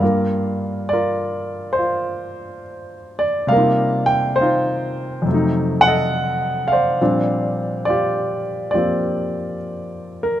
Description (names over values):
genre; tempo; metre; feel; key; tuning
jazz ballad; 69 BPM; 4/4; swing 67% on 8ths; Bb major; A4 = 440 Hz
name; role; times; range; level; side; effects
warm baby grand piano; solo; 0.0-10.4 s; F2 to G5; -17 LUFS; equal; none
room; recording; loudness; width
light reverb, small room ambience; rough home demo mix; -17 LUFS; side -11 dB against mid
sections
0.0-10.4 A section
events
none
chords
0.0 Gm7; 3.5 Cm11; 5.3 F7b9; 7.0 Bb69